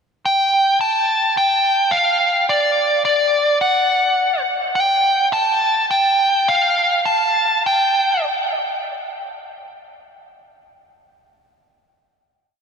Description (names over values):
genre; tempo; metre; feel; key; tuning
post-rock; 85-107 BPM; 4/4; straight; unclear; A4 = 440 Hz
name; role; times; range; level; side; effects
nasal lead guitar with a parked wah; solo; 0.3-8.3 s; D5 to A5; -15 LUFS; equal; overdrive, analog delay
room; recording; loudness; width
wet huge ambient reverb, RT60 4.3 s; dreamy mix soaked in reverb; -15 LUFS; side -6 dB against mid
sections
0.3-9.6 A section; 9.6-12.5 final hit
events
slowing down 4.7-9.6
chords
none